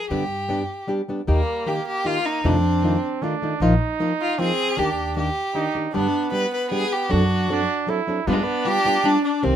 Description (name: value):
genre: mexican folk, mariachi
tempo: 155 BPM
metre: 3/4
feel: straight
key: unclear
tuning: A4 = 440 Hz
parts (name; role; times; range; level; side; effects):
- clear violin; melody; 0.0-9.6 s; Ab3 to B4; -23 LUFS; left 1 dB; none
- nylon-string guitar; accompaniment; 0.1-9.6 s; F2 to A4; -24 LUFS; left 1 dB; none
- upright bass; bass; 0.1-9.6 s; Bb1 to G2; -23 LUFS; equal; none
- warm trumpet; second line; 1.3-9.6 s; G3 to E4; -27 LUFS; right 6 dB; none
room: light reverb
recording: minimal, uncompressed stereo recording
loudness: -20 LUFS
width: side -10 dB against mid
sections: 0.0-9.6 A section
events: none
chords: 0.1 G; 1.3 Eb; 2.4 F7; 3.6 Bbsus4; 4.8 Ebmaj7; 5.9 G; 7.1 D7/F#; 8.3 G7